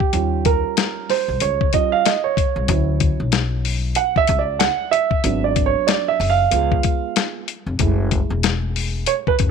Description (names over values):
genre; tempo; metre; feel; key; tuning
hip hop, jazz-hop; 94 BPM; 4/4; swing 59% on 16ths; F# minor; A4 = 437 Hz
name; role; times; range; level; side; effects
dark concert grand piano; accompaniment; 0.0-9.5 s; F#3 to F#5; -20 LUFS; right 12 dB; none
dusty soul sampler-style drum kit; drums; 0.0-9.5 s; hi-hat, kick drum, snare drum; -20 LUFS; left 6 dB; none
upright bass; bass; 0.1-9.5 s; E1 to D#2; -22 LUFS; left 2 dB; none
room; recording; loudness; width
light reverb, studio ambience; 1960s-style stereo with parts hard left and right; -17 LUFS; side -6 dB against mid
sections
0.0-9.5 A section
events
grand piano solo 0.0-9.5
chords
0.1 D#9; 2.7 Dmaj9; 5.2 G#m7b5; 6.5 C#7; 7.8 F#m9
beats
| 0.14 0.77 1.41 2.05 | 2.69 3.33 3.97 4.60 | 5.24 5.88 6.52 7.16 | 7.79 8.43 9.07